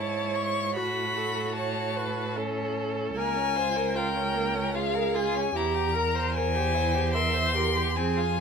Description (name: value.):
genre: classical, slow romantic movement for string quartet.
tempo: 75 BPM.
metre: 3/4.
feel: rubato.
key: unclear.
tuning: A4 = 440 Hz.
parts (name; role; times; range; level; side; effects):
warm violin; melody; 0.0-8.4 s; F5 to C#6; -29 LUFS; left 6 dB; none.
rich violin; second line; 0.0-8.4 s; Bb3 to C5; -32 LUFS; left 2 dB; none.
warm viola; accompaniment; 0.0-8.4 s; F#4 to E5; -31 LUFS; right 3 dB; none.
rich cello; bass; 0.0-8.4 s; Db2 to A2; -31 LUFS; right 4 dB; none.
room: light reverb.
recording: minimal, uncompressed stereo recording.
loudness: -25 LUFS.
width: side -6 dB against mid.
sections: 0.0-8.4 A section.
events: none.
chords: 0.0 F#m7 (rootless); 0.8 F#m/A; 3.2 Bbm/Db; 5.5 C7/E.